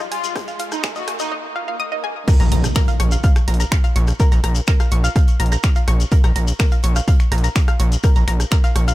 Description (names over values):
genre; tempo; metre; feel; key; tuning
melodic techno; 125 BPM; 4/4; straight; Bb minor; A4 = 440 Hz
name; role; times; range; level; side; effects
analog synth brass; melody; 0.0-1.3 s; Eb4 to Gb4; -28 LUFS; left 1 dB; chorus, sidechain pumping, digital delay
analog pluck; arpeggios; 0.0-8.9 s; Ab4 to F6; -26 LUFS; equal; chorus, sidechain pumping, ping-pong delay
punchy analog drum machine; drums; 0.0-8.9 s; crash cymbal, finger snaps, hi-hat, rim click; -27 LUFS; equal; high-pass filter on snare, high-pass filter on hats, high-pass filter on cymbals
shekere; percussion; 0.0-8.9 s; none; -32 LUFS; left 6 dB; none
riser, swell and impact; sound effects; 0.0-4.2 s; none; -28 LUFS; equal; none
big rock drum kit; drums; 0.1-8.9 s; hi-hat, snare drum; -39 LUFS; right 2 dB; none
electronic kick drum; drums; 0.4-8.6 s; none; -15 LUFS; equal; none
gritty driven synth bass; bass; 2.4-8.9 s; Bb1; -17 LUFS; equal; sidechain pumping
room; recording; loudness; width
little or no reverb; high-pass filter; -15 LUFS; side -16 dB against mid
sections
0.0-2.3 A section; 2.3-8.9 B section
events
build-up 0.0-2.3; riser 0.0-1.3; filter sweep on synth arpeggio sound 0.0-2.3; swell 1.3-2.3; drop 2.3-8.9; impact 2.3-4.2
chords
0.0 Fm7; 2.3 Bbm